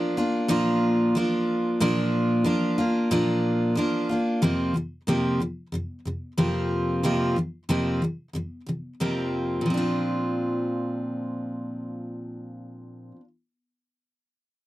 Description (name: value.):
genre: pop.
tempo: 92 BPM.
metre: 4/4.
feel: straight.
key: Bb major.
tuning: A4 = 441 Hz.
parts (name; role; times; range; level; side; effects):
picked steel-string acoustic guitar; solo; 0.0-13.3 s; F2 to F4; -23 LUFS; equal; none.
room: light reverb.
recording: dry, close 1970s-style studio recording.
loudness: -23 LUFS.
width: side -16 dB against mid.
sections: 0.0-4.4 A section; 4.4-9.6 B section; 9.6-12.3 C section.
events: none.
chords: 0.0 Bb; 4.4 Fsus4; 9.6 Bbadd9.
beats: 0.50 1.15 | 1.80 2.45 3.10 3.75 | 4.41 5.06 5.71 6.37 | 7.02 7.68 8.33 8.99 | 9.64 10.30 10.96 11.61.